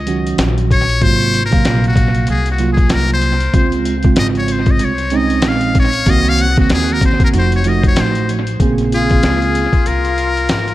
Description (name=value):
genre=hip hop, jazz-hop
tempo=95 BPM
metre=4/4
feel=swing 59% on 16ths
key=Bb minor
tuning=A4 = 440 Hz
part: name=upright bass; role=bass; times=0.0-10.7 s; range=F1 to Eb2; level=-18 LUFS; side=left 1 dB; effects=none
part: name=mellow tine electric piano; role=accompaniment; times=0.1-9.6 s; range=C3 to F5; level=-17 LUFS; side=right 5 dB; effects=analog delay
part: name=dusty soul sampler-style drum kit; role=drums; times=0.1-10.7 s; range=hi-hat, kick drum, snare drum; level=-16 LUFS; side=left 1 dB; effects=none
part: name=trumpet with metal mute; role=melody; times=0.7-10.7 s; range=Gb4 to Gb5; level=-19 LUFS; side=left 3 dB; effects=analog delay
part: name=breathy mellow jazz flute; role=second line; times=8.9-10.7 s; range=F4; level=-21 LUFS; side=left 6 dB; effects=none
room=light reverb, studio reverb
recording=echo-heavy mix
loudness=-12 LUFS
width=side -15 dB against mid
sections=0.0-8.6 A section; 8.6-10.7 B section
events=muted trumpet solo 0.0-8.6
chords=0.0 Ebm7; 1.0 Ab13; 3.5 Dbmaj7; 6.1 Cm7b5; 7.3 F7b9; 8.6 Bbm9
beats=0.39 | 1.02 1.65 2.28 2.91 | 3.54 4.18 4.81 5.44 | 6.07 6.70 7.33 7.96 | 8.60 9.23 9.86 10.49